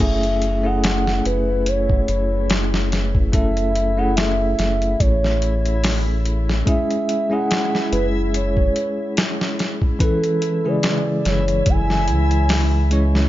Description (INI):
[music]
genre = trip hop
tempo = 72 BPM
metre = 4/4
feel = swing 55% on 16ths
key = F# minor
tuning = A4 = 442 Hz
[part]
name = pure breathy sine lead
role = melody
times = 0.0-12.9 s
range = A4 to G#5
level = -24 LUFS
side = right 1 dB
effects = chorus, cassette tape, tape echo
[part]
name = bell-like tine electric piano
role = accompaniment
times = 0.0-13.3 s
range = C#3 to C#5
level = -23 LUFS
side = equal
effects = tremolo, tape echo
[part]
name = Celtic harp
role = arpeggios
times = 0.0-1.6 s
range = none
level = barely audible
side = none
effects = none
[part]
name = soft dub sub bass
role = bass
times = 0.0-13.3 s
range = F#1 to C#2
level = -20 LUFS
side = equal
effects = none
[part]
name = boom bap sampler-style drum kit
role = drums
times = 0.0-13.3 s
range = hi-hat, kick drum, snare drum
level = -21 LUFS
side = equal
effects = none
[part]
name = backwards swelling texture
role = texture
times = 0.0-13.3 s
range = E4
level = -32 LUFS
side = left 3 dB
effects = built-in reverb
[sound]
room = little or no reverb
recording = nothing above 7.5 kHz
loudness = -17 LUFS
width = side -14 dB against mid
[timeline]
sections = 0.0-13.3 A section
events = none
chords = 0.0 F#m7; 6.7 C#m/F#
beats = | 0.00 0.83 1.67 2.50 | 3.33 4.17 5.00 5.83 | 6.67 7.50 8.33 9.17 | 10.00 10.83 11.67 12.50